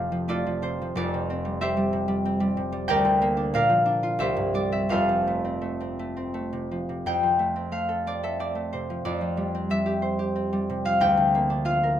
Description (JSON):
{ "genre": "classical, solo harp piece", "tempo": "81-94 BPM", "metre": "3/4", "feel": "rubato", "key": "F major", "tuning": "A4 = 440 Hz", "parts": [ { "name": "concert harp", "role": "solo", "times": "0.0-12.0 s", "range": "F1 to G5", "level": "-23 LUFS", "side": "equal", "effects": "none" } ], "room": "light reverb", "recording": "minimal, uncompressed stereo recording", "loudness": "-23 LUFS", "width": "side -10 dB against mid", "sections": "0.0-7.1 A section; 7.1-12.0 B section", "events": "none", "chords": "0.0 F; 1.0 C/F; 2.9 Bb/D; 3.5 Bb; 4.2 C; 4.9 F; 9.1 C/F; 11.0 Bb/D" }